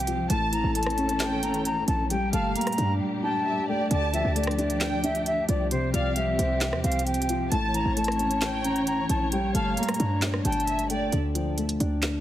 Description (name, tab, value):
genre	hip hop, trap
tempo	133 BPM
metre	4/4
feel	half-time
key	D minor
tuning	A4 = 438 Hz
part	silver concert flute	melody	0.0-11.1 s	C5 to Bb5	-29 LUFS	left 1 dB	low-pass filter, tape echo
part	dark concert grand piano	accompaniment	0.0-12.2 s	A2 to D4	-29 LUFS	left 2 dB	low-pass filter
part	dark symphonic string section	sustained chords	0.0-11.1 s	Bb2 to C#5	-34 LUFS	right 2 dB	none
part	short 808-style bass	bass	0.0-12.2 s	G1 to G2	-29 LUFS	right 1 dB	none
part	trap drum kit	drums	0.0-12.1 s	handclaps, hi-hat, rim click, snare drum	-31 LUFS	right 1 dB	none
part	dark studio violin section	second line	0.3-11.1 s	D5 to A5	-35 LUFS	right 3 dB	tape echo
room	light reverb, small room reverb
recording	heavily compressed radio sound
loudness	-23 LUFS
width	side -12 dB against mid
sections	0.0-11.1 A section; 11.1-12.2 B section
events	drums muted 3.0-3.9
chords	0.3 A; 2.1 Gmadd9; 3.9 Dm; 5.7 Csus4; 7.5 A; 9.3 Gmadd9; 11.1 Dm